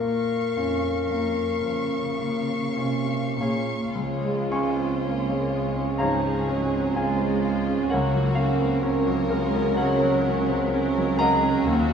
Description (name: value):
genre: classical, romantic movement for piano and orchestra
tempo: 48-65 BPM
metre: 4/4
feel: rubato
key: Bb minor, Db major from 4.0 s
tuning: A4 = 436 Hz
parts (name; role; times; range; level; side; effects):
- clear concert grand piano; melody; 0.0-11.9 s; Db2 to Db6; -24 LUFS; right 1 dB; none
- rich studio violin section; second line; 0.0-11.9 s; F4 to Db6; -32 LUFS; left 2 dB; none
- warm clarinet; second line; 0.0-3.4 s; Bb4; -28 LUFS; left 6 dB; none
- warm studio cello section; bass; 0.0-11.9 s; Db2 to Db3; -32 LUFS; right 3 dB; none
- warm studio violin section; melody; 4.0-11.9 s; Bb4 to Db5; -35 LUFS; left 5 dB; none
- warm studio viola section; accompaniment; 4.0-11.9 s; F3 to Bb3; -32 LUFS; right 3 dB; none
- dark French horn section; sustained chords; 4.0-11.9 s; F3 to C5; -33 LUFS; left 3 dB; none
- rich studio double bass section; bass; 4.0-11.9 s; Db2 to Eb2; -32 LUFS; right 2 dB; none
room: wet recital hall reverb, RT60 1.6 s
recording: heard from further back in the room, nothing above 10.5 kHz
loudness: -22 LUFS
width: side -7 dB against mid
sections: 0.0-4.0 A section; 4.0-11.9 B section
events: none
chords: 0.0 Bbm; 4.0 Db; 7.9 Gb/Db